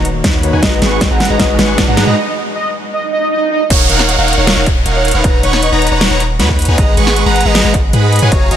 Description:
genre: future bass.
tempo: 156 BPM.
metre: 4/4.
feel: half-time.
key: unclear.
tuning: A4 = 438 Hz.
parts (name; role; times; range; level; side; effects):
tine electric piano; accompaniment; 0.0-2.2 s; D#3 to C#5; -22 LUFS; left 4 dB; medium tremolo, sidechain pumping, digital delay.
big bright polysynth; riff; 0.0-8.6 s; Ab3 to Db6; -15 LUFS; right 1 dB; sidechain pumping.
long sustained 808-style bass; bass; 0.0-8.6 s; D#1 to Ab2; -15 LUFS; equal; sidechain pumping.
riser, swell and downlifter; sound effects; 0.0-6.8 s; none; -20 LUFS; right 4 dB; none.
dubstep drum kit; drums; 0.1-8.6 s; crash cymbal, hi-hat, snare drum; -17 LUFS; equal; none.
electronic kick drum; drums; 0.2-8.4 s; none; -14 LUFS; equal; distortion.
warm velvety synth lead; melody; 0.6-8.6 s; Cb5 to Gb5; -19 LUFS; equal; chorus, sidechain pumping, ping-pong delay.
room: light reverb, digital ambience.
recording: none.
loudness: -10 LUFS.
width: side -10 dB against mid.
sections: 0.0-3.7 A section; 3.7-8.6 B section.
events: build-up 0.0-3.7; drum fill 0.0-2.2; riser 0.0-2.2; break 2.2-3.7; swell 3.1-3.7; drop 3.7-8.6.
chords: 0.0 Bmaj9/D#; 0.6 Abm7; 2.2 N.C.; 3.7 Ebm9; 5.2 Bmaj9/D#; 6.8 Abm7.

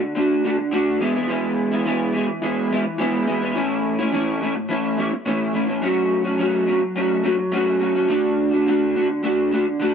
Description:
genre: rock.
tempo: 106 BPM.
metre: 4/4.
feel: straight.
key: D lydian.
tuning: A4 = 440 Hz.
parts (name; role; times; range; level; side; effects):
electric guitar through a small old amp; solo; 0.0-9.9 s; A2 to F#4; -18 LUFS; equal; analog chorus.
room: light reverb.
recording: dark, warm production.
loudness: -18 LUFS.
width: side -7 dB against mid.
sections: 0.0-9.9 A section.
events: none.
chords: 0.0 D; 1.0 E; 3.6 A; 5.8 F#m; 8.1 D.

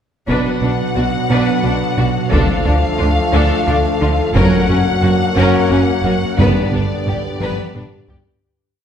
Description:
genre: cinematic, hybrid orchestral and electronic film score.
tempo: 59 BPM (dotted quarters).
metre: 6/8.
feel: straight.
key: unclear.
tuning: A4 = 440 Hz.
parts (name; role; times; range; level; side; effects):
rich symphonic violin section; melody; 0.3-8.2 s; D5 to F#5; -22 LUFS; left 4 dB; none.
rich studio violin section; second line; 0.3-8.2 s; C#4 to B4; -24 LUFS; left 2 dB; none.
clear symphonic viola section; accompaniment; 0.3-8.2 s; B3 to D4; -24 LUFS; left 1 dB; none.
airy breathy pad; sustained chords; 0.3-8.4 s; D3 to B4; -24 LUFS; left 1 dB; chorus.
bright trombone section; sustained chords; 0.3-8.1 s; D3 to B3; -25 LUFS; right 2 dB; none.
warm French horn section; sustained chords; 0.3-8.1 s; D3 to A4; -26 LUFS; left 6 dB; none.
harp-like synth pluck; arpeggios; 0.3-8.3 s; D3 to B4; -25 LUFS; right 2 dB; none.
rubbery square bass; riff; 0.3-8.3 s; D2 to B2; -20 LUFS; right 1 dB; none.
clear symphonic double bass section; bass; 0.3-8.2 s; F#1 to D2; -22 LUFS; right 2 dB; none.
rich symphonic cello section; bass; 0.3-8.2 s; F#2 to D3; -22 LUFS; right 2 dB; none.
taiko ensemble; drums; 0.3-8.4 s; none; -22 LUFS; left 1 dB; none.
room: wet scoring stage reverb, RT60 1.5 s.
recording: heard from further back in the room.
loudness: -13 LUFS.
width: side -8 dB against mid.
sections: 0.3-8.4 theme.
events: fade-out 6.4-8.4; drum fill 7.4-8.4.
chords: 0.3 Bm; 2.3 Dm; 4.4 F#; 6.4 G.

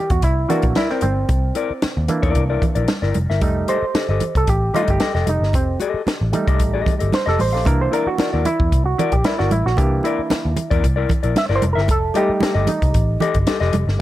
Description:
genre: funk.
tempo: 113 BPM.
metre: 4/4.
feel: straight.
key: C mixolydian.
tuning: A4 = 440 Hz.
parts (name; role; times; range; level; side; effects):
auto-wah clav; stabs; 0.0-14.0 s; E3 to E5; -22 LUFS; right 3 dB; plate reverb.
vintage muted picked electric bass; bass; 0.1-14.0 s; F1 to E2; -20 LUFS; equal; none.
compact cocktail drum kit; drums; 0.1-13.9 s; hi-hat, kick drum, snare drum; -21 LUFS; equal; none.
mellow electric guitar; accompaniment; 0.5-13.8 s; E4 to F5; -24 LUFS; left 7 dB; spring reverb, plate reverb.
congas; percussion; 0.5-13.9 s; none; -24 LUFS; right 4 dB; none.
room: light reverb.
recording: none.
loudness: -16 LUFS.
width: side -14 dB against mid.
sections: 0.0-14.0 A section.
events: clav solo 0.0-14.0.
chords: 0.0 C9; 3.4 F9; 7.7 C9; 11.9 F9.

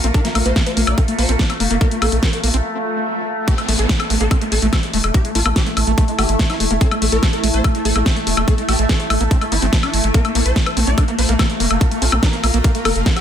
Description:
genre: psychedelic trance.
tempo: 144 BPM.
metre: 4/4.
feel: straight.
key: unclear.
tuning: A4 = 440 Hz.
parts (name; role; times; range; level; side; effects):
swarming rave lead; melody; 0.0-13.2 s; A3 to D5; -24 LUFS; equal; chorus, phaser, sidechain pumping, digital delay.
overtone-sweeping drone; sustained chords; 0.0-13.2 s; A3; -26 LUFS; left 1 dB; chorus, built-in reverb, phaser, sidechain pumping.
screaming distorted acid line; riff; 0.0-13.1 s; A3 to D4; -25 LUFS; moving between left 6 dB and right 7 dB; distortion, chorus, auto-pan, sidechain pumping, ping-pong delay.
round analog bass; bass; 0.0-13.0 s; E1 to Bb1; -19 LUFS; equal; none.
big-room dance drum kit; drums; 0.0-13.2 s; hi-hat, snare drum, woodblock; -21 LUFS; left 1 dB; studio reverb.
granular cloud pad; texture; 0.0-13.2 s; A3 to Bb5; -26 LUFS; equal; built-in reverb, sidechain pumping.
electronic kick drum; drums; 0.1-13.1 s; none; -16 LUFS; equal; studio reverb.
swell and downlifter; sound effects; 2.8-6.8 s; none; -29 LUFS; equal; none.
room: light reverb.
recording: dense, heavily limited modern master.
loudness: -14 LUFS.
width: side -9 dB against mid.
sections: 0.0-3.5 A section; 3.5-13.2 B section.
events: break 2.6-3.5; swell 2.8-3.5; drop 3.5-13.2.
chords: 0.0 Bb5; 3.5 A5; 10.1 Bb5.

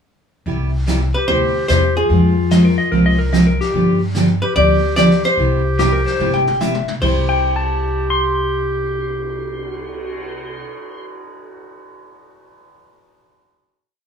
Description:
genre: country, western swing.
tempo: 147 BPM.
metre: 4/4.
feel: swing 67% on 8ths.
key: C major.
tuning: A4 = 441 Hz.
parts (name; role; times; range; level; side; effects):
picked steel-string acoustic guitar; accompaniment; 0.5-10.7 s; C3 to G4; -18 LUFS; right 2 dB; none.
upright bass; bass; 0.5-10.6 s; G1 to G2; -20 LUFS; left 1 dB; none.
vintage brush drum kit; drums; 0.5-10.2 s; brushed snare drum, crash cymbal, cymbal swell, hi-hat, kick drum, snare drum, toms; -28 LUFS; left 1 dB; none.
archtop guitar, miked and amplified; melody; 1.1-10.6 s; Ab4 to D5; -18 LUFS; left 2 dB; none.
warm clarinet; second line; 1.2-10.6 s; F4 to G4; -23 LUFS; equal; none.
clean lap steel guitar; second line; 2.5-11.0 s; G4 to C6; -21 LUFS; left 3 dB; none.
room: moderate studio reverb, RT60 0.5 s.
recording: band playing live in one room, studio ambience.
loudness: -14 LUFS.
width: side -7 dB against mid.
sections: 0.5-7.0 A section; 7.0-10.3 final chord.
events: drum fill 6.2-7.0.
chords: 0.5 Cmaj7; 2.1 Fmadd9; 3.7 G7; 5.4 Cmaj7; 7.0 C.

